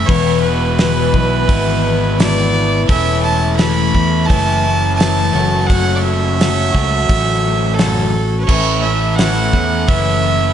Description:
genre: folk rock and heartland rock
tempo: 86 BPM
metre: 4/4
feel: straight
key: A major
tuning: A4 = 436 Hz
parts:
  - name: clear fiddle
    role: melody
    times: 0.0-10.5 s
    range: A4 to B5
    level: -19 LUFS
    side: right 3 dB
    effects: none
  - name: picked twelve-string acoustic guitar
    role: accompaniment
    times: 0.0-10.5 s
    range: E2 to F#4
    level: -20 LUFS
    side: left 8 dB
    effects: slapback echo
  - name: pedal harmonium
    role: sustained chords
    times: 0.0-10.5 s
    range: E4 to A5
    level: -29 LUFS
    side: right 1 dB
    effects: none
  - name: overdriven electric guitar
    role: riff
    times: 0.0-10.5 s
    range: E2 to F#4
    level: -20 LUFS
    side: right 1 dB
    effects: slapback echo
  - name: fingered electric bass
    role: bass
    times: 0.0-10.5 s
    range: E1 to E2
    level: -18 LUFS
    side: equal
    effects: none
  - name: damped 70s drum kit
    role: drums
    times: 0.1-10.0 s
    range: crash cymbal, hi-hat, kick drum, snare drum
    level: -19 LUFS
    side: equal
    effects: none
room: light reverb, small room ambience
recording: nothing above 10.9 kHz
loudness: -12 LUFS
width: side -9 dB against mid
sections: 0.0-10.5 A section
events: none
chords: 0.1 E; 2.9 A/E; 5.3 F#m; 8.5 A

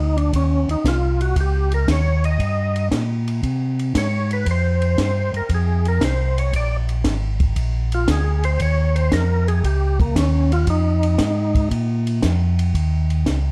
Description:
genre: soul jazz organ trio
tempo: 116 BPM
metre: 4/4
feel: swing 69% on 8ths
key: Eb mixolydian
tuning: A4 = 439 Hz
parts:
  - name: percussive tonewheel organ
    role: melody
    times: 0.0-11.7 s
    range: Bb3 to Eb5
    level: -26 LUFS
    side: equal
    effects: slow rotary speaker, overdrive, chorus vibrato, plate reverb
  - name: mellow tonewheel organ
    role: bass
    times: 0.0-13.5 s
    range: Ab1 to C3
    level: -21 LUFS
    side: equal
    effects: overdrive, chorus vibrato, slow rotary speaker
  - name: compact cocktail drum kit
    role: drums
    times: 0.2-13.4 s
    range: hi-hat, kick drum, ride cymbal, snare drum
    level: -27 LUFS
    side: equal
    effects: none
room: light reverb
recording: dark, warm production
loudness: -20 LUFS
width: mono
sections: 0.0-12.8 A section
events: tonewheel organ solo 0.0-12.8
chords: 0.3 Eb7sus2/C; 2.4 Gm; 3.4 Abadd11; 4.5 F5; 6.5 Bb7; 8.6 Db69; 10.7 Fm7; 11.7 Bb5; 12.8 Eb7(no3)

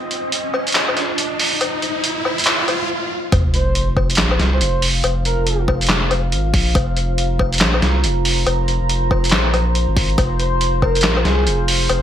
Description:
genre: deep dubstep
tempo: 140 BPM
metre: 4/4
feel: swing 61% on 16ths, half-time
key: unclear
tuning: A4 = 440 Hz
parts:
  - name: deep dark ambient pad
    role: sustained chords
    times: 0.0-12.0 s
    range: F4 to Bb5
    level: -25 LUFS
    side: right 1 dB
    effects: chorus, built-in reverb
  - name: riser and sub drop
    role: sound effects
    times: 0.0-5.0 s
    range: none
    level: -22 LUFS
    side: equal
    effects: none
  - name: trip hop sampler-style drum kit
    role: drums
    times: 0.1-12.0 s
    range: handclaps, hi-hat, snare drum, woodblock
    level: -18 LUFS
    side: left 1 dB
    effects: high-pass filter on hats, high-pass filter on perc, high-pass filter on snare, high-pass filter on room, gated reverb
  - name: saturated sub bass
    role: bass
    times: 3.3-12.0 s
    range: F1 to C2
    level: -19 LUFS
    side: equal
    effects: none
  - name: electronic kick drum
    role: drums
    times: 3.3-10.9 s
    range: none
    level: -18 LUFS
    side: equal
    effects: none
  - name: breathy flute-like synth lead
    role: melody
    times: 3.5-5.6, 10.4-11.6 s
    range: Ab4 to C5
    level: -24 LUFS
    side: equal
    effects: lush chorus, dub echo
room: light reverb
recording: bright 1980s-style digital production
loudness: -15 LUFS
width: side -10 dB against mid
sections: 0.0-3.3 A section; 3.3-12.0 B section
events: build-up 0.0-3.3; riser 0.0-2.9; stop 2.9-3.3; drop 3.3-12.0; impact 3.3-5.0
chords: 0.0 F5

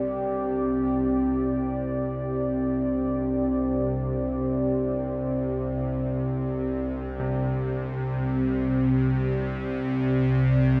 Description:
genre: dark ambient drone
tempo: free time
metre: none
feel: none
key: unclear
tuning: A4 = 438 Hz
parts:
  - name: deep dark ambient pad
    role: sustained chords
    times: 0.0-10.8 s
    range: C4 to D5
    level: -29 LUFS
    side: equal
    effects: chorus, built-in reverb
  - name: bright grand piano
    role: arpeggios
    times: 0.0-10.8 s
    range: C3 to G4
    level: -43 LUFS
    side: equal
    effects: none
  - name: bowed-like drone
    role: drone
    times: 0.0-10.8 s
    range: C2 to C3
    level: -29 LUFS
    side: equal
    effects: built-in reverb
room: wet cathedral reverb, RT60 5.2 s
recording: in a vast, echoing space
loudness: -26 LUFS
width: mono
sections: 0.0-10.8 A section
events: none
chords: 0.0 Csus2

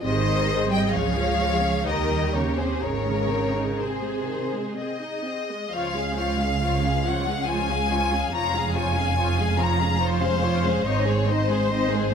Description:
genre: classical, slow romantic movement for string orchestra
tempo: 60-72 BPM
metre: 3/4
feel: rubato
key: Ab major, Db major from 5.7 s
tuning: A4 = 440 Hz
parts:
  - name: rich studio violin section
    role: melody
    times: 0.0-12.1 s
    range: C5 to Bb5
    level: -27 LUFS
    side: left 5 dB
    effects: none
  - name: rich studio violin section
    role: second line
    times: 0.0-12.1 s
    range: F4 to F5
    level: -30 LUFS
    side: left 4 dB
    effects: none
  - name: rich studio viola section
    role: accompaniment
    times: 0.0-12.1 s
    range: C3 to Ab4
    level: -29 LUFS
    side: equal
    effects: none
  - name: rich studio cello section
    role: bass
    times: 0.0-12.1 s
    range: Db2 to G3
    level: -28 LUFS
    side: right 4 dB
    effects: none
  - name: rich studio double bass section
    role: bass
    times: 0.0-12.1 s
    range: F1 to Eb2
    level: -27 LUFS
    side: right 4 dB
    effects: none
room: light reverb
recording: close, detailed microphones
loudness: -21 LUFS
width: side -7 dB against mid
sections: 0.0-5.7 A section; 5.7-12.1 B section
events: none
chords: 0.0 Ab; 0.9 Db; 1.9 Eb7; 2.8 Ab; 5.7 Db; 8.3 Db/F; 10.9 Ab

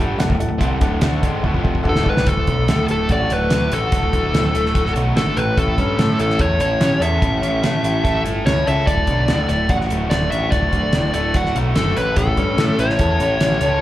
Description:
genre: classic rock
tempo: 145 BPM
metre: 4/4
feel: straight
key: D major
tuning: A4 = 440 Hz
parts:
  - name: clear upright piano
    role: accompaniment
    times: 0.0-2.2 s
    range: A4 to F#5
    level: -26 LUFS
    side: left 1 dB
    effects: plate reverb
  - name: overdriven electric guitar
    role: riff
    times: 0.0-13.8 s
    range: D2 to A4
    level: -22 LUFS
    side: equal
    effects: slapback echo
  - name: growling picked electric bass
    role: bass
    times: 0.0-13.8 s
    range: D1 to A2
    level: -21 LUFS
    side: equal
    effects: overdrive
  - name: damped 70s drum kit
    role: drums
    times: 0.2-13.7 s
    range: hi-hat, kick drum, snare drum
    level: -20 LUFS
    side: equal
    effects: none
  - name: dark smooth lead guitar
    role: melody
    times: 1.9-13.8 s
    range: A4 to F#5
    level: -21 LUFS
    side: left 1 dB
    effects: overdrive, slapback echo, plate reverb
room: light reverb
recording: live gig heard through the venue's PA, club reverb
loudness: -15 LUFS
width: side -14 dB against mid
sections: 0.0-2.3 A section; 2.3-13.8 B section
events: drum fill 1.4-2.3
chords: 0.0 D; 5.4 A; 8.9 D; 12.0 A

